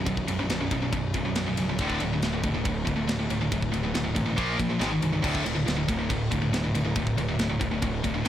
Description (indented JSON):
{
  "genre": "heavy metal",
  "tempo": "139 BPM",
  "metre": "4/4",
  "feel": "straight",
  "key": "unclear",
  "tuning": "A4 = 440 Hz",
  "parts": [
    { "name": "high-gain distorted guitar", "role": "riff", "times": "0.0-8.3 s", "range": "B1 to A#3", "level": "-26 LUFS", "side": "equal", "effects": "distortion" },
    { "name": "fuzz picked electric bass", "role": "bass", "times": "0.0-8.3 s", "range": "B0 to A#1", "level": "-31 LUFS", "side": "equal", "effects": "overdrive" },
    { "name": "tight metal drum kit", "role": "drums", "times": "0.1-8.3 s", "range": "crash cymbal, kick drum, ride cymbal, snare drum", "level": "-32 LUFS", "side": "equal", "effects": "soft clipping on kick" }
  ],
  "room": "little or no reverb",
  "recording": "blown-out, overdriven recording, overdrive",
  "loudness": "-24 LUFS",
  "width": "side -11 dB against mid",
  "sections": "0.0-8.3 A section",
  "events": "none",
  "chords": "0.0 B5; 1.8 D5; 4.4 A#5; 4.8 G#5; 5.2 D5"
}